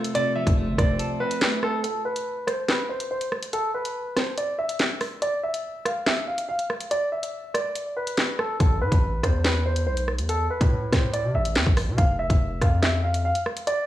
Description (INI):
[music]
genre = hip hop, drill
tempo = 142 BPM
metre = 4/4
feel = half-time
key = A minor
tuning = A4 = 438 Hz
[part]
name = clean electric guitar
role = accompaniment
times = 0.0-1.8 s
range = C3 to C5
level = -28 LUFS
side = equal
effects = wide subtle chorus, low-pass filter
[part]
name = warbly tape-like pad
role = sustained chords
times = 0.0-1.8 s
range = C3 to A4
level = -38 LUFS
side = right 1 dB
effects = chorus, built-in reverb, phaser
[part]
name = drill drum kit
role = drums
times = 0.0-13.8 s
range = handclaps, hi-hat, kick drum, rim click, snare drum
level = -24 LUFS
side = equal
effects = none
[part]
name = clear concert grand piano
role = melody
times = 0.1-13.8 s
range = A4 to F5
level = -27 LUFS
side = equal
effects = low-pass filter, analog delay
[part]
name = distorted 808-style bass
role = bass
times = 0.5-1.0, 8.6-13.3 s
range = F1 to C3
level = -25 LUFS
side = equal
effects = distortion
[sound]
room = light reverb, digital ambience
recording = dry, gritty hardware recording, cassette tape, studio reverb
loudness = -22 LUFS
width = side -14 dB against mid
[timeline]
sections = 0.0-1.8 A section; 1.8-13.9 B section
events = break 1.0-1.8, 1.8-8.6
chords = 0.0 F; 1.8 N.C.; 8.6 Asus2; 12.0 Fmaj7(no3)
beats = | 0.15 0.57 1.00 1.42 | 1.84 2.26 2.69 3.11 | 3.53 3.95 4.38 4.80 | 5.22 5.64 6.07 6.49 | 6.91 7.33 7.76 8.18 | 8.60 9.02 9.45 9.87 | 10.29 10.71 11.14 11.56 | 11.98 12.40 12.83 13.25 | 13.67